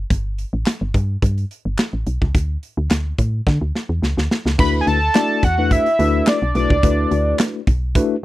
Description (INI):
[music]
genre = early-eighties boogie funk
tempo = 107 BPM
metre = 4/4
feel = straight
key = D major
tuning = A4 = 441 Hz
[part]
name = woody FM bass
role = bass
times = 0.0-8.0 s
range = G1 to D3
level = -20 LUFS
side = equal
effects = none
[part]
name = modern studio drum kit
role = drums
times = 0.1-8.1 s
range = crash cymbal, handclaps, hi-hat, kick drum, snare drum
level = -18 LUFS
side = equal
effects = none
[part]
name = fat analog lead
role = melody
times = 4.6-7.4 s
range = D5 to B5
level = -19 LUFS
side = equal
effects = chorus
[part]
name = mellow tine electric piano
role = accompaniment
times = 4.6-8.2 s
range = A3 to D5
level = -20 LUFS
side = left 3 dB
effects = medium stereo tremolo
[sound]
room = little or no reverb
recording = dry, close 1970s-style studio recording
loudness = -16 LUFS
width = side -16 dB against mid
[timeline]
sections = 0.0-4.6 A section; 4.6-8.2 B section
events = drum fill 3.5-4.6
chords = 0.1 N.C.; 4.6 D69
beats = | 0.10 0.66 1.23 1.78 | 2.35 2.91 3.47 4.03 | 4.59 5.15 5.71 6.27 | 6.83 7.39 7.95